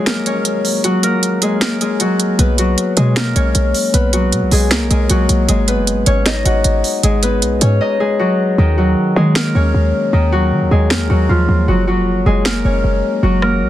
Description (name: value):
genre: hip hop, trap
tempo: 155 BPM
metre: 4/4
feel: half-time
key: unclear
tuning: A4 = 440 Hz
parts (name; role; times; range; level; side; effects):
- Celtic harp; melody; 0.0-13.7 s; Eb3 to Gb5; -15 LUFS; left 1 dB; none
- trap drum kit; drums; 0.1-13.5 s; finger snaps, hi-hat, rim click, snare drum; -19 LUFS; right 2 dB; none
- short 808-style bass; bass; 2.4-13.7 s; F1 to Eb3; -15 LUFS; equal; none
room: little or no reverb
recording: dense, heavily limited modern master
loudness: -12 LUFS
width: side -13 dB against mid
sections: 0.0-13.7 A section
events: break 0.0-2.4; drums muted 7.8-8.6; hi-hats muted 8.6-13.7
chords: 0.0 Gb; 2.4 B5; 5.5 Abm7; 8.6 Ebmadd9; 11.7 Gb